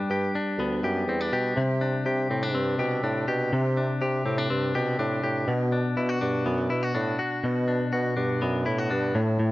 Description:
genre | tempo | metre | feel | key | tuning
jangly indie pop | 123 BPM | 4/4 | straight | unclear | A4 = 441 Hz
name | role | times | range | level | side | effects
direct-recorded clean electric guitar | arpeggios | 0.0-9.5 s | A2 to G4 | -26 LUFS | left 1 dB | vibrato effect, digital delay
mellow bassoon | bass | 0.1-9.5 s | D2 to C3 | -28 LUFS | right 1 dB | none
room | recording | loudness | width
light reverb | nothing above 7.5 kHz | -24 LUFS | side -17 dB against mid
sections
0.0-9.5 A section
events
none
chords
0.0 G; 1.6 Csus2; 5.5 Bm

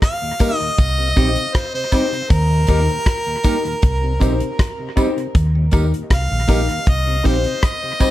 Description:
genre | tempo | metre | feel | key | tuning
roots reggae | 79 BPM | 4/4 | straight | unclear | A4 = 440 Hz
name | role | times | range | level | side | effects
clear harmonica | melody | 0.0-8.1 s | Bb4 to F5 | -22 LUFS | equal | tape echo, plate reverb
damped 70s drum kit | drums | 0.0-8.1 s | hi-hat, kick drum, rim click | -16 LUFS | equal | none
mellow tonewheel organ | accompaniment | 0.2-8.1 s | Eb2 to Eb4 | -30 LUFS | left 2 dB | slow rotary speaker, dub echo
semi-hollow electric guitar | accompaniment | 0.4-8.1 s | Bb3 to G4 | -26 LUFS | right 5 dB | tape echo
dark upright piano | stabs | 0.4-8.1 s | Eb4 to C5 | -24 LUFS | left 6 dB | none
tambourine and woodblock | percussion | 0.4-8.1 s | none | -32 LUFS | right 2 dB | none
vintage muted fingered electric bass | bass | 0.8-7.4 s | Bb1 to Eb2 | -18 LUFS | equal | none
room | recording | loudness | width
light reverb | none | -15 LUFS | side -14 dB against mid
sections
0.0-8.1 A section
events
none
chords
0.0 Eb; 0.8 Cm; 2.3 Eb; 3.8 Cm

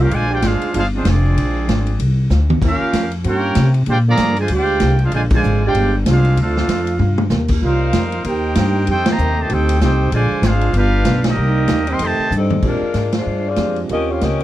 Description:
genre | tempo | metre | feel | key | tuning
jazz, big band swing | 192 BPM | 4/4 | swing 61% on 8ths | Bb major | A4 = 440 Hz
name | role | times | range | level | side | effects
clear trumpet section | melody | 0.0-12.3 s | Ab3 to C6 | -21 LUFS | equal | none
warm trombone section | second line | 0.0-12.3 s | C3 to G4 | -21 LUFS | right 4 dB | none
upright bass | bass | 0.0-14.4 s | F1 to C3 | -17 LUFS | left 1 dB | none
swinging big-band drum kit | drums | 0.1-14.4 s | crash cymbal, hi-hat, kick drum, ride cymbal, snare drum, toms | -22 LUFS | equal | none
mellow saxophone section | melody | 12.4-14.4 s | G3 to Eb5 | -21 LUFS | left 4 dB | none
warm concert grand piano | accompaniment | 12.6-14.4 s | Ab3 to G4 | -23 LUFS | right 5 dB | none
room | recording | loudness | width
little or no reverb | none | -14 LUFS | side -14 dB against mid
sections
0.0-12.6 A section; 12.6-14.4 B section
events
drum fill 2.3-2.6, 7.0-7.3, 12.3-12.6; band accent 5.3, 9.0, 11.2, 13.1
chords
0.1 Bb13; 2.6 Eb13; 3.9 Bb13; 6.4 Dm7; 7.0 Ebadd9; 7.6 Cm7; 8.9 F13; 10.1 Bb9; 10.8 G7; 11.4 Cm7; 12.0 F9; 12.6 Bb13; 13.9 Eb13

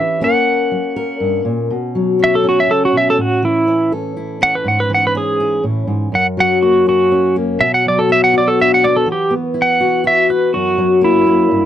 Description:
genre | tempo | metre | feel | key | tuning
acoustic folk duo or small band | 122 BPM | 3/4 | straight | unclear | A4 = 440 Hz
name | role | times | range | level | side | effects
pedal steel guitar | melody | 0.0-11.7 s | E4 to F#5 | -14 LUFS | right 2 dB | none
fingerpicked steel-string acoustic guitar | accompaniment | 0.0-11.7 s | F#2 to A#4 | -16 LUFS | left 3 dB | none
room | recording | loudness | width
little or no reverb | dry, close 1970s-style studio recording | -12 LUFS | side -10 dB against mid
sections
0.0-1.7 A section; 1.7-11.7 B section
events
pedal steel guitar solo 1.7-11.7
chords
0.2 F#; 1.7 Bsus2; 3.2 A; 4.7 E6/G#; 6.1 F#; 7.6 Bm; 9.1 Esus2; 10.5 F#7

